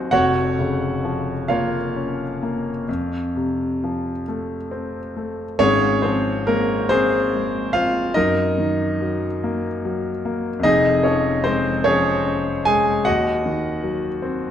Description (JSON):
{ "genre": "classical, romantic nocturne for solo piano", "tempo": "43-52 BPM (dotted quarters)", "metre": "12/8", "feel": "rubato", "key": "unclear", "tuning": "A4 = 440 Hz", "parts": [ { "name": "clear grand piano", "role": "solo", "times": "0.0-14.5 s", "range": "F1 to Ab5", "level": "-18 LUFS", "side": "equal", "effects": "none" } ], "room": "wet recital hall reverb, RT60 1.7 s", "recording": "dark, warm production", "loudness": "-18 LUFS", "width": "side -9 dB against mid", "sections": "0.0-14.5 A section", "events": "none", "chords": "0.1 Bbm/F; 2.9 F; 5.6 Fm/Ab; 8.2 Ebm/Gb; 10.6 Db/F; 13.1 Cdim/Eb", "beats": "| 0.12 1.50 2.88 4.26 | 5.60 6.90 8.15 9.41 | 10.65 11.86 13.07 14.23" }